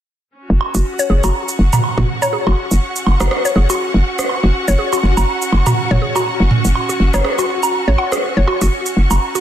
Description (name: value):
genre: minimal techno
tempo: 122 BPM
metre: 4/4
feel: swing 57% on 16ths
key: unclear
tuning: A4 = 440 Hz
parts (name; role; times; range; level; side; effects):
- clear studio string section; texture; 0.4-9.4 s; C#4 to C#6; -22 LUFS; equal; none
- hollow knocking FM bass; bass; 0.5-9.2 s; F#1 to A1; -14 LUFS; equal; tube saturation
- booming analog drum machine; percussion; 0.6-9.2 s; rim click, toms, woodblock; -19 LUFS; right 3 dB; studio reverb, soft clipping on snare
- mallet-like synth pluck; riff; 0.7-9.4 s; F#4 to F#5; -21 LUFS; left 2 dB; chorus, ping-pong delay
- shaker; drums; 0.7-9.4 s; none; -27 LUFS; right 3 dB; studio reverb
room: light reverb, digital ambience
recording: dense, heavily limited modern master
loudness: -13 LUFS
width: side -10 dB against mid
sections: 0.4-9.4 A section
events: filter sweep on synth arpeggio sound 0.4-9.4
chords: 0.4 F#5